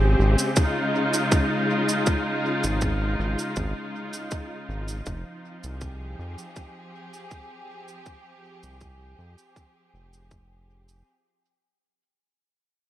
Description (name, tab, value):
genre	ambient dub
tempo	80 BPM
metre	4/4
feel	straight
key	F minor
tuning	A4 = 440 Hz
part	warm studio string section	sustained chords	0.0-11.1 s	Db3 to Ab4	-27 LUFS	equal	none
part	round analog bass	bass	0.0-11.0 s	F1 to F2	-24 LUFS	equal	none
part	cabasa	drums	0.4-11.0 s	none	-32 LUFS	right 3 dB	dub echo
part	electronic kick drum	drums	0.6-10.5 s	none	-24 LUFS	equal	none
room	light reverb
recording	none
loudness	-22 LUFS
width	side -13 dB against mid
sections	0.0-11.1 A section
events	fade-out 0.0-11.1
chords	0.0 Db; 5.1 Fm9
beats	0.56 1.31 | 2.06 2.81 3.56 4.31 | 5.06 5.81 6.56 7.31 | 8.06 8.81 9.56 10.31